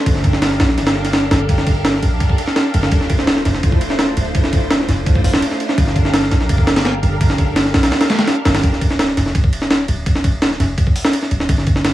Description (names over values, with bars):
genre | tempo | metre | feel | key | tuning
drum and bass, jungle | 168 BPM | 4/4 | straight | D minor | A4 = 440 Hz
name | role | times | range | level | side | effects
soft string machine | sustained chords | 0.0-8.6 s | A3 to F5 | -22 LUFS | equal | ensemble chorus, vintage 12-bit sampler grit
warm 808-style bass | bass | 0.1-11.9 s | D1 to D2 | -19 LUFS | equal | none
breakbeat sampler-style drum kit | drums | 0.1-11.9 s | hi-hat, kick drum, ride cymbal, snare drum | -15 LUFS | equal | studio reverb
room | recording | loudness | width
little or no reverb | vinyl crackle, small room ambience | -13 LUFS | side -14 dB against mid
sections
0.0-8.6 A section; 8.6-11.9 A section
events
drop 0.0-8.6, 8.6-11.9; kick drops out 7.9-8.6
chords
0.1 Gm9; 2.9 Dm9; 5.8 Gm9; 8.6 Dm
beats
| 0.06 0.42 0.78 1.13 | 1.49 1.85 2.21 2.56 | 2.92 3.28 3.63 3.99 | 4.35 4.71 5.06 5.42 | 5.78 6.13 6.49 6.85 | 7.21 7.56 7.92 8.28 | 8.63 8.99 9.35 9.71 | 10.06 10.42 10.78 11.13 | 11.49 11.85